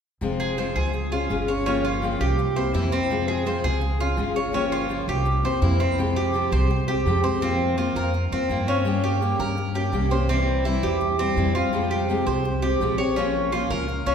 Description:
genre	latin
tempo	167 BPM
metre	4/4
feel	straight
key	F harmonic minor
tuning	A4 = 441 Hz
part	fingerpicked steel-string acoustic guitar	accompaniment	0.2-14.1 s	C3 to Ab4	-25 LUFS	left 3 dB	none
part	upright bass	bass	0.2-14.1 s	F1 to G2	-26 LUFS	equal	none
part	Cuban tres	arpeggios	0.4-14.1 s	C4 to Db5	-25 LUFS	right 3 dB	none
room	wet concert hall reverb, RT60 2.1 s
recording	recorded in a church or concert hall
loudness	-21 LUFS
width	side -7 dB against mid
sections	0.2-6.0 A section; 6.0-14.1 B section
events	none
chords	0.2 Fm; 0.9 Db; 1.7 Gm7b5; 2.4 C7; 3.1 Fm; 3.8 Db; 4.5 Gm7b5; 5.3 C7; 6.0 Fmadd9; 7.4 Bbsus2/F; 8.9 Gdim; 10.3 C; 11.7 Fmadd9; 13.2 Bbm

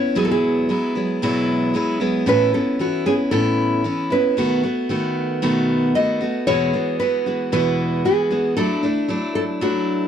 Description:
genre	pop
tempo	114 BPM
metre	4/4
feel	straight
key	A major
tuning	A4 = 439 Hz
part	nylon-string guitar	melody	0.0-10.1 s	F#4 to D#5	-21 LUFS	right 1 dB	none
part	picked steel-string acoustic guitar	accompaniment	0.0-10.1 s	E2 to F#4	-19 LUFS	equal	none
room	light reverb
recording	dry, close 1970s-style studio recording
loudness	-17 LUFS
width	side -8 dB against mid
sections	0.0-2.3 A section; 2.3-10.1 B section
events	none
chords	0.2 Eadd9; 2.3 Aadd9; 4.4 B7; 6.5 Eadd9; 8.6 Dadd9/F#

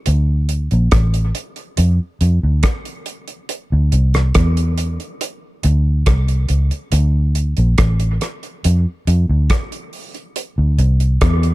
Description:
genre	dub reggae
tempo	70 BPM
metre	4/4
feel	straight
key	D minor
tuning	A4 = 441 Hz
part	vintage muted fingered electric bass	bass	0.1-11.5 s	A1 to F2	-14 LUFS	equal	none
part	damped 70s drum kit	drums	0.1-11.5 s	hi-hat, kick drum, rim click	-19 LUFS	equal	none
room	little or no reverb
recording	dark, warm production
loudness	-14 LUFS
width	side -18 dB against mid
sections	0.0-11.5 A section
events	none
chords	none

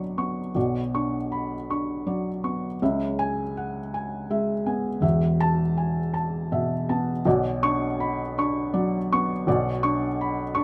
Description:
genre	neoclassical minimalist piano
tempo	81 BPM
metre	3/4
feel	rubato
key	B dorian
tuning	A4 = 441 Hz
part	felt-muted upright piano	solo	0.0-10.6 s	E1 to C#6	-26 LUFS	equal	none
room	light reverb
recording	none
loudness	-26 LUFS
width	mono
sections	0.0-10.6 A section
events	none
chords	0.0 Bmadd9; 2.8 C#m7; 5.0 Esus4; 7.3 Bmadd9

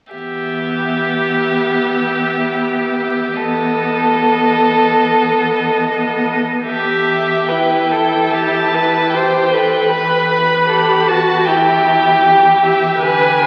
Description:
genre	classical, slow romantic movement for string quartet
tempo	75 BPM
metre	4/4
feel	uneven beats, rubato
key	E minor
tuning	A4 = 440 Hz
part	rich violin	melody	0.1-13.5 s	D#5 to B5	-19 LUFS	equal	none
part	rich violin	second line	0.1-13.5 s	F#4 to C5	-18 LUFS	equal	none
part	warm viola	accompaniment	0.1-13.5 s	B3 to B4	-21 LUFS	equal	none
part	dark cello	bass	0.1-13.5 s	E2 to D3	-30 LUFS	equal	none
room	wet cathedral reverb, RT60 5.0 s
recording	very old 78 rpm record, vinyl crackle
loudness	-15 LUFS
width	mono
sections	0.1-6.7 A section; 6.7-13.5 B section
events	none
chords	0.1 Em; 9.9 B5/E; 11.5 Em

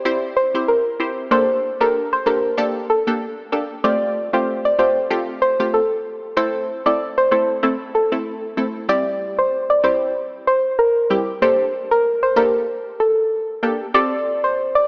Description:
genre	dancehall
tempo	95 BPM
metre	4/4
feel	swing 56% on 16ths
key	unclear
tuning	A4 = 441 Hz
part	punchy chord stab	accompaniment	0.0-14.8 s	G3 to C5	-22 LUFS	equal	chorus, phaser
part	soft round pluck	melody	0.4-14.8 s	A4 to D5	-17 LUFS	equal	chorus
room	light reverb, digital ambience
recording	small speaker sound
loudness	-16 LUFS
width	side -32 dB against mid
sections	0.0-8.9 A section; 8.9-14.9 B section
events	none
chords	0.0 C; 1.3 Gmadd9; 3.8 Fadd9; 6.4 Am; 8.9 C; 11.4 Gmadd9; 13.9 Fadd9

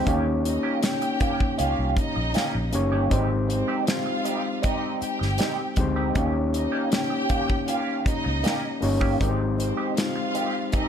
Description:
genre	lush 1970s-style soul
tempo	79 BPM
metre	4/4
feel	straight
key	Ab major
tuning	A4 = 440 Hz
part	overdriven tine electric piano	accompaniment	0.0-10.9 s	Ab3 to Db5	-26 LUFS	left 2 dB	none
part	clean electric guitar	riff	0.0-10.9 s	Eb3 to G4	-31 LUFS	right 5 dB	wah
part	vintage muted fingered electric bass	bass	0.1-9.7 s	Gb1 to Eb2	-26 LUFS	equal	none
part	modern studio drum kit	drums	0.1-10.9 s	hi-hat, kick drum, snare drum	-27 LUFS	equal	none
part	warm studio violin section	second line	0.5-10.9 s	C4 to G5	-30 LUFS	equal	none
room	light reverb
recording	none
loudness	-22 LUFS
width	side -8 dB against mid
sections	0.0-10.9 A section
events	none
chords	0.1 Eb7; 3.1 Abmaj7; 6.2 Eb7; 9.2 Abmaj7

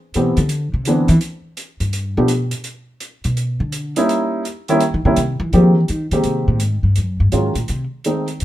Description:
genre	jazz, small-group swing and bop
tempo	167 BPM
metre	4/4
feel	swing 64% on 8ths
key	unclear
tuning	A4 = 440 Hz
part	hi-hat	drums	0.1-8.4 s	none	-30 LUFS	right 2 dB	none
part	dark baby grand piano	accompaniment	0.2-8.3 s	Eb3 to G4	-18 LUFS	equal	none
part	upright bass	bass	0.2-8.4 s	Gb2 to F3	-17 LUFS	equal	none
room	light reverb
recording	minimal, uncompressed stereo recording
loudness	-15 LUFS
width	side -14 dB against mid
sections	0.0-5.5 A section; 5.5-8.4 A section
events	upright bass solo 0.0-8.4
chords	0.0 Am9; 1.2 G; 2.7 Bmmaj7; 4.1 Eb7b9; 5.5 Abmaj9; 7.0 Ebm11; 7.7 Ab

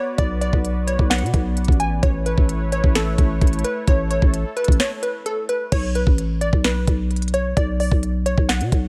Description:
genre	hip hop, trap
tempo	130 BPM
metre	4/4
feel	half-time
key	B minor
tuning	A4 = 437 Hz
part	glassy wavetable pluck	melody	0.0-8.9 s	A4 to G#5	-27 LUFS	equal	chorus, low-pass filter
part	warm analog pad	sustained chords	0.0-5.7 s	A3 to D5	-33 LUFS	equal	chorus, tremolo
part	growling 808-style bass	bass	0.2-8.9 s	A1 to B2	-24 LUFS	equal	none
part	trap drum kit	drums	0.2-8.8 s	crash cymbal, hi-hat, kick drum, snare drum	-21 LUFS	equal	none
room	digital ambience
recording	none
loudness	-20 LUFS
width	mono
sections	0.0-5.7 A section; 5.7-8.9 B section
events	break 4.8-5.7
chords	0.0 Bm; 2.0 Aadd9; 5.7 Bm

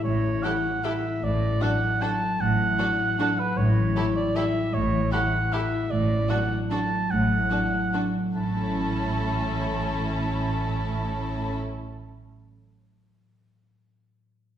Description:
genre	classical, orchestral ballroom waltz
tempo	137-165 BPM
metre	3/4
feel	rubato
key	A major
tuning	A4 = 438 Hz
part	mellow cor anglais	second line	0.0-11.6 s	B4 to A5	-28 LUFS	right 2 dB	none
part	concert harp	arpeggios	0.0-12.4 s	A2 to C#5	-28 LUFS	left 2 dB	none
part	dark studio double bass section	bass	0.0-11.6 s	A1	-30 LUFS	right 1 dB	none
part	warm studio cello section	bass	0.0-11.6 s	A2	-30 LUFS	right 2 dB	none
part	rich studio violin section	melody	0.4-11.6 s	A4	-40 LUFS	left 5 dB	none
part	rich studio violin section	second line	0.4-11.6 s	E4 to G4	-38 LUFS	left 2 dB	none
part	warm studio viola section	accompaniment	0.4-11.6 s	C#4 to E4	-34 LUFS	right 1 dB	none
room	wet recital hall reverb, RT60 1.6 s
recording	heard from further back in the room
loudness	-23 LUFS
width	side -10 dB against mid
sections	0.0-8.4 A section; 8.4-10.8 B section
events	slowing down 5.3-8.4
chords	0.0 A7; 1.2 D/A; 3.6 A7; 5.9 D/A; 8.4 A

